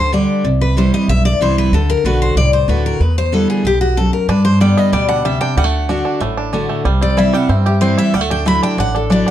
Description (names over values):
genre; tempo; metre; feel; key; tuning
bluegrass; 187 BPM; 4/4; straight; unclear; A4 = 440 Hz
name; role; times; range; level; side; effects
picked steel-string acoustic guitar; melody; 0.0-9.3 s; F#4 to B5; -18 LUFS; left 3 dB; slapback echo
picked steel-string acoustic guitar; accompaniment; 0.0-9.3 s; E2 to G4; -17 LUFS; equal; none
upright bass; bass; 0.0-9.2 s; A1 to G2; -16 LUFS; equal; none
bluegrass banjo; melody; 4.3-9.3 s; G3 to G4; -21 LUFS; right 5 dB; none
room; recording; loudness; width
moderate studio ambience, RT60 0.5 s; dark, warm production; -12 LUFS; side -11 dB against mid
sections
0.0-9.3 A section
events
none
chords
0.4 C; 1.7 D; 3.0 Em7; 4.3 G; 5.6 D; 6.9 C; 8.1 Dadd9